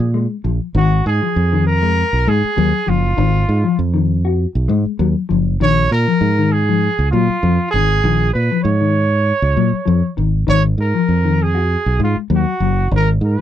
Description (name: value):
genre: afrobeat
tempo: 99 BPM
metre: 4/4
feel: swing 53% on 16ths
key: G# dorian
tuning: A4 = 441 Hz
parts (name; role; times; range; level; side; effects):
- warm trumpet; melody; 0.0-13.4 s; E#4 to C#5; -19 LUFS; right 3 dB; none
- mellow electric guitar; arpeggios; 0.0-13.4 s; D#3 to F#4; -18 LUFS; left 8 dB; lush chorus
- fingered electric bass; bass; 0.0-13.4 s; F#1 to A#2; -16 LUFS; right 1 dB; none
room: light reverb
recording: dry, close 1970s-style studio recording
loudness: -14 LUFS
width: side -11 dB against mid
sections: 0.7-13.4 A section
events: none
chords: 0.0 A#7(no3); 0.7 G#7(no3); 5.6 A#m7; 10.5 G#7sus2